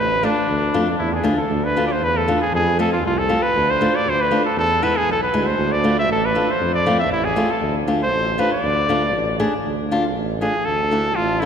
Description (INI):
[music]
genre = klezmer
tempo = 118 BPM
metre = 2/4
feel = straight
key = D dorian sharp4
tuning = A4 = 440 Hz
[part]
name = clear cornet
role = melody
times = 0.0-11.5 s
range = D4 to E5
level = -20 LUFS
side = equal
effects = none
[part]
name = warm tuba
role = bass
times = 0.0-11.5 s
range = A1 to F2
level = -24 LUFS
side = right 1 dB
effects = none
[part]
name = flamenco guitar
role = accompaniment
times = 0.2-11.5 s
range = G#3 to G#4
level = -22 LUFS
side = left 1 dB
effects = none
[sound]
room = wet church reverb, RT60 3.7 s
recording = recorded in a church or concert hall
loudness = -17 LUFS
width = side -7 dB against mid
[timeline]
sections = 0.0-1.5 A section; 1.5-9.7 A section; 9.7-11.5 B section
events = cornet solo 9.7-11.5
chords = 0.0 Dm; 2.5 F; 3.5 Dm; 4.6 E; 5.6 Dm; 6.6 F; 7.6 Dm